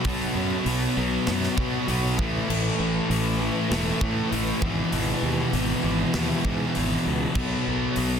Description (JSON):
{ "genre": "hard rock", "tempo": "99 BPM", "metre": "4/4", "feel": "straight", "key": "unclear", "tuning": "A4 = 444 Hz", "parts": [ { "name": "mellow tonewheel organ", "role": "sustained chords", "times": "0.0-8.2 s", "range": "A3 to F#5", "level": "-38 LUFS", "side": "right 2 dB", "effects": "none" }, { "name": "distorted electric guitar", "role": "riff", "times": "0.0-8.2 s", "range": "E2 to B3", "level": "-30 LUFS", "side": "right 10 dB", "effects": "distortion" }, { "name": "distorted electric guitar", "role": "riff", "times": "0.0-8.2 s", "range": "E2 to B3", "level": "-29 LUFS", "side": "equal", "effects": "overdrive" }, { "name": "sludgy distorted guitar", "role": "riff", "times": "0.0-8.2 s", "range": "E2 to B3", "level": "-28 LUFS", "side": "left 8 dB", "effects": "overdrive" }, { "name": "tight metal drum kit", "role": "drums", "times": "0.0-8.1 s", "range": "crash cymbal, hi-hat, kick drum, snare drum", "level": "-31 LUFS", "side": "equal", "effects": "none" }, { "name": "fuzz fingered electric bass", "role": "bass", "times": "0.1-8.2 s", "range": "E1 to B2", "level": "-29 LUFS", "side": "equal", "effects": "overdrive" } ], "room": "small room reverb", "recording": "dense, heavily limited modern master", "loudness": "-22 LUFS", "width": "side -7 dB against mid", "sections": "0.0-8.2 A section", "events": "none", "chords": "0.0 B5; 2.2 A5; 4.6 E/G#; 7.4 B5", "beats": "| 0.05 0.67 1.27 1.89 | 2.49 3.10 3.71 4.32 | 4.93 5.54 6.14 6.75 | 7.36 7.96" }